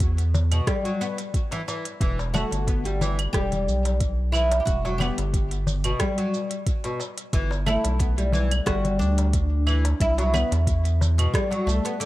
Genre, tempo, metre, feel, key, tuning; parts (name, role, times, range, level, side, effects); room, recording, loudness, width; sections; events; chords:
organic downtempo; 90 BPM; 4/4; swing 54% on 16ths; E minor; A4 = 440 Hz
round analog bass; bass; 0.0-11.8 s; E1 to E2; -23 LUFS; equal
electronic kick drum; drums; 0.0-11.5 s; -25 LUFS; equal
organic electronic drum kit; drums; 0.0-12.1 s; claves, hi-hat, rim click, shaker; -32 LUFS; right 2 dB
darbuka; percussion; 0.3-11.8 s; -32 LUFS; left 3 dB
oud; arpeggios; 0.5-12.1 s; B2 to B3; -28 LUFS; left 1 dB; tape echo
oud; melody; 2.3-12.0 s; D4 to G4; -29 LUFS; right 1 dB; tape echo
light reverb, digital ambience; -21 LUFS; side -16 dB against mid
0.0-12.1 A section
0.0 N.C.; 2.0 Emadd9; 7.3 G; 10.0 C